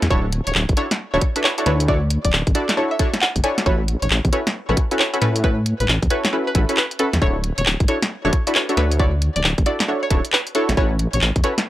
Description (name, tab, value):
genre	UK garage, two-step garage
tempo	135 BPM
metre	4/4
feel	swing 64% on 16ths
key	unclear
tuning	A4 = 439 Hz
part	string-like resonator pluck	melody	0.0-11.6 s	A4 to G#5	-26 LUFS	equal	chorus, phaser, tape echo
part	deep soft wobble bass	bass	0.0-11.4 s	D1 to A2	-20 LUFS	equal	chorus
part	garage drum kit	drums	0.0-11.6 s	handclaps, hi-hat, snare drum	-20 LUFS	equal	none
part	punchy chord stab	stabs	0.1-11.5 s	C#4 to D5	-23 LUFS	equal	chorus
part	electronic kick drum	drums	0.1-11.4 s	none	-19 LUFS	equal	none
room	digital ambience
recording	dry, gritty hardware recording, transformer saturation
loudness	-17 LUFS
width	side -14 dB against mid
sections	0.0-11.7 A section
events	none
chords	0.1 Dmaj9; 3.7 A69; 7.2 Dmaj9; 10.8 A69